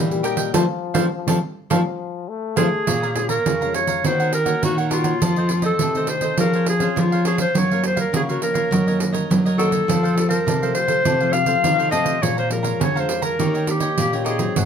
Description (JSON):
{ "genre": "samba and choro", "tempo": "103 BPM", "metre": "4/4", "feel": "straight", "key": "Bb minor", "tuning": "A4 = 440 Hz", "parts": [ { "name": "warm trombone", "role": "second line", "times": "0.0-2.9 s", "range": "F3 to A3", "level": "-28 LUFS", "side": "left 8 dB", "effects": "none" }, { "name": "cavaquinho", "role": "accompaniment", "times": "0.0-14.7 s", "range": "Eb4 to Bb5", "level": "-27 LUFS", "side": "right 3 dB", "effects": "none" }, { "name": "nylon-string guitar", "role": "accompaniment", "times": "0.0-14.7 s", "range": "F2 to Ab4", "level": "-27 LUFS", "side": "left 6 dB", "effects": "none" }, { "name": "nylon-string guitar", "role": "bass", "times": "0.0-14.7 s", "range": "Ab2 to Gb3", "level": "-22 LUFS", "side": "equal", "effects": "none" }, { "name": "pandeiro", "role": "percussion", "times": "0.1-14.7 s", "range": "none", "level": "-24 LUFS", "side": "right 6 dB", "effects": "none" }, { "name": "clear clarinet", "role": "melody", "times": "2.6-14.7 s", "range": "F4 to F5", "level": "-21 LUFS", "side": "left 1 dB", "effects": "none" } ], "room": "light reverb", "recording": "close, detailed microphones", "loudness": "-17 LUFS", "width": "side -7 dB against mid", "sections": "0.0-2.9 A section; 2.9-14.7 B section", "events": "band accent 0.5-2.9", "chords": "0.0 Eb; 0.5 F; 2.9 Bbm7; 4.0 Ebm7; 5.2 F7; 6.4 Dbmaj7/F; 7.5 Gbmaj7; 8.7 Ebm7/Gb; 9.9 F; 12.2 Bbm7; 13.4 Eb7" }